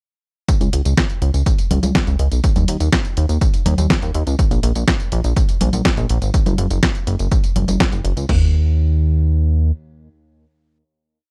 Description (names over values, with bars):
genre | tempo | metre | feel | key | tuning
italo disco | 123 BPM | 4/4 | straight | unclear | A4 = 438 Hz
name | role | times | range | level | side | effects
clean 12-bit digital drum machine | drums | 0.5-8.3 s | congas, hi-hat, snare drum, tambourine | -23 LUFS | equal | small room ambience
punchy analog drum machine | drums | 0.5-8.4 s | crash cymbal, kick drum, toms | -20 LUFS | equal | small room ambience
chorused synth bass | bass | 0.6-9.7 s | Gb1 to Eb2 | -19 LUFS | equal | tube saturation
room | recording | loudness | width
digital ambience | dry, close 1970s-style studio recording | -17 LUFS | mono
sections
0.5-8.3 chorus; 8.3-11.3 final chord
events
none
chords
none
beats
| 0.49 0.97 1.46 1.95 | 2.44 2.93 3.41 3.90 | 4.39 4.88 5.37 5.85 | 6.34 6.83 7.32 7.80 | 8.29 8.78 9.27